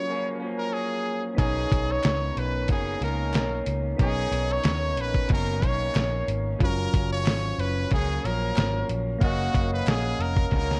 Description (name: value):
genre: indie pop, bedroom pop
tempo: 92 BPM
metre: 4/4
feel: swing 55% on 16ths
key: B lydian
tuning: A4 = 442 Hz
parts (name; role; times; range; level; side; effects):
- brilliant trumpet; melody; 0.0-10.8 s; F#4 to C#5; -33 LUFS; equal; analog chorus
- electric guitar through a small old amp; accompaniment; 0.0-10.8 s; F#2 to C#4; -34 LUFS; equal; subtle chorus, vibrato effect
- soft electric-piano-like synth keys; accompaniment; 0.0-10.8 s; F#3 to A#5; -37 LUFS; equal; chorus, cassette tape
- vintage muted picked electric bass; bass; 1.4-10.8 s; E#1 to D#2; -31 LUFS; equal; none
- dusty soul sampler-style drum kit; drums; 1.4-10.8 s; hi-hat, kick drum, snare drum; -28 LUFS; equal; none
- group handclap; percussion; 2.0-10.0 s; none; -46 LUFS; equal; none
room: light reverb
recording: worn, warbling old tape, cassette tape, warbly pitch drift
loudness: -26 LUFS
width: mono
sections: 0.0-10.8 A section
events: drum fill 10.5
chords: 0.0 F#maj7; 1.4 Bmaj9; 6.6 F#maj7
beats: 0.08 0.73 | 1.38 2.03 2.69 3.34 | 3.99 4.64 5.29 5.95 | 6.60 7.25 7.90 8.55 | 9.21 9.86 10.51